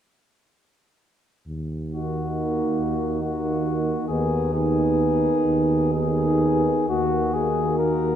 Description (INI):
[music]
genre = classical, hymn-like piece for brass band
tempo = 40-46 BPM (dotted quarters)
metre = 6/8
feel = rubato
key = Eb minor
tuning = A4 = 440 Hz
[part]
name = warm tuba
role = bass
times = 1.5-8.2 s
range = Eb2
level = -27 LUFS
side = right 1 dB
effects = none
[part]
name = warm flugelhorn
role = melody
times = 1.9-8.2 s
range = Gb4 to Bb4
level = -27 LUFS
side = left 5 dB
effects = none
[part]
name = mellow French horn section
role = second line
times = 1.9-8.2 s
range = Eb4 to Gb4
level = -27 LUFS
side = right 3 dB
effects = none
[part]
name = warm euphonium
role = accompaniment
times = 1.9-8.2 s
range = Bb3 to Cb4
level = -27 LUFS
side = left 2 dB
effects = none
[part]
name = warm trombone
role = accompaniment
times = 1.9-8.2 s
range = Eb3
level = -28 LUFS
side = right 4 dB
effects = none
[sound]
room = wet cathedral reverb, RT60 4.8 s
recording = heard from further back in the room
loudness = -20 LUFS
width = side -9 dB against mid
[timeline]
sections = 1.5-6.9 A section; 6.9-8.2 B section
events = none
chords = 1.5 Ebm; 4.1 Abm/Eb; 6.9 Ebm